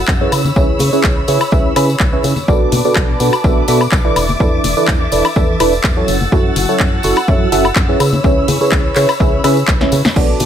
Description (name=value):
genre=piano house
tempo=125 BPM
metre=4/4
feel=straight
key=unclear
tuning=A4 = 440 Hz
part: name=dark studio violin section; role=sustained chords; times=0.0-10.5 s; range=B4 to A6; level=-22 LUFS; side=equal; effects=sidechain pumping
part: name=organ-like FM bass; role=bass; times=0.0-10.5 s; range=E1 to C#3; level=-19 LUFS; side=equal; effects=sidechain pumping
part: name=electronic kick drum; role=drums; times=0.1-10.3 s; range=none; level=-15 LUFS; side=equal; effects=none
part: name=house drum kit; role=drums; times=0.1-10.5 s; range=crash cymbal, handclaps, hi-hat, snare drum, woodblock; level=-19 LUFS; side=left 2 dB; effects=none
part: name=tambourine and congas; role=percussion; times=0.1-10.5 s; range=none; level=-24 LUFS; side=left 4 dB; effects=none
part: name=barking FM electric piano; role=riff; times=0.2-10.5 s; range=B2 to E5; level=-15 LUFS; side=right 1 dB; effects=phaser, sidechain pumping, low-pass filter, dub echo
room=digital ambience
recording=none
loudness=-11 LUFS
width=side -9 dB against mid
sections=0.0-10.2 A section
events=drum fill 9.8-10.2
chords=0.3 C#m7; 2.5 Bm7; 4.2 E7sus4; 6.1 F#m7; 8.0 C#m7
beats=0.08 | 0.56 1.04 1.52 2.00 | 2.48 2.96 3.44 3.92 | 4.40 4.88 5.36 5.84 | 6.32 6.80 7.28 7.76 | 8.24 8.72 9.20 9.68 | 10.16